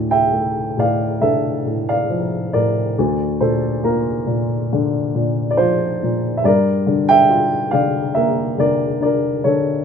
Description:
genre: classical, lyrical solo piano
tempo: 69 BPM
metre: 4/4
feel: rubato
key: D minor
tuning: A4 = 440 Hz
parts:
  - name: dark baby grand piano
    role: solo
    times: 0.0-9.8 s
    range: D2 to G5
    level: -16 LUFS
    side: equal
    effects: none
room: light reverb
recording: minimal, uncompressed stereo recording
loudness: -16 LUFS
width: side -7 dB against mid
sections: 0.0-9.8 A section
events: none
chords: 0.0 Dm; 3.0 Bbadd9/D; 6.4 Gm7

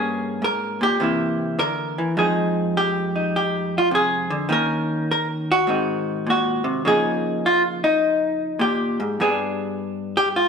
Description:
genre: solo jazz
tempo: 103 BPM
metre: 4/4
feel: swing 68% on 8ths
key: unclear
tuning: A4 = 442 Hz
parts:
  - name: vintage hollow-body jazz guitar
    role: solo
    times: 0.0-10.5 s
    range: F2 to Bb4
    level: -19 LUFS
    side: equal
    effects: none
room: wet stone room reverb, RT60 1.3 s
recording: band playing live in one room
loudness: -19 LUFS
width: side -6 dB against mid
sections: 0.0-10.5 A section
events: none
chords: 0.0 Gdim; 1.0 C7; 2.2 Fm7; 4.5 Eb5; 5.7 Ab7; 6.8 Db69; 9.2 G

